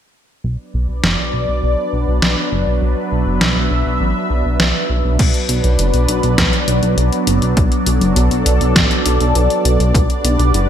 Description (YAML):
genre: synthwave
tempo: 101 BPM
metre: 4/4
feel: straight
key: B minor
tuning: A4 = 440 Hz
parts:
  - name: lush unison pad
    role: sustained chords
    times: 0.9-10.7 s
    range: F#3 to E5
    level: -18 LUFS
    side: equal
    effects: chorus, phaser, sidechain pumping
  - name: chorused synth bass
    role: bass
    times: 0.4-10.7 s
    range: F#1 to B1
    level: -16 LUFS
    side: equal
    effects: sidechain pumping
  - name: detuned 8-bit digital drum machine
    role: drums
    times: 1.0-10.7 s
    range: crash cymbal, hi-hat, snare drum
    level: -18 LUFS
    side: equal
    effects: overdrive, gated reverb
  - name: electronic kick drum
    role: drums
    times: 5.2-10.1 s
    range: none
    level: -16 LUFS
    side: equal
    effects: overdrive
room: moderate lush hall reverb, RT60 1.8 s, digital ambience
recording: bright 1980s-style digital production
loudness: -13 LUFS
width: side -9 dB against mid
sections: 0.4-5.2 A section; 5.2-10.7 B section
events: none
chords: 0.4 Bm; 9.9 Gmaj7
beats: | 0.44 1.03 1.63 2.22 | 2.82 3.41 4.01 4.60 | 5.19 5.79 6.38 6.98 | 7.57 8.16 8.76 9.35 | 9.95 10.54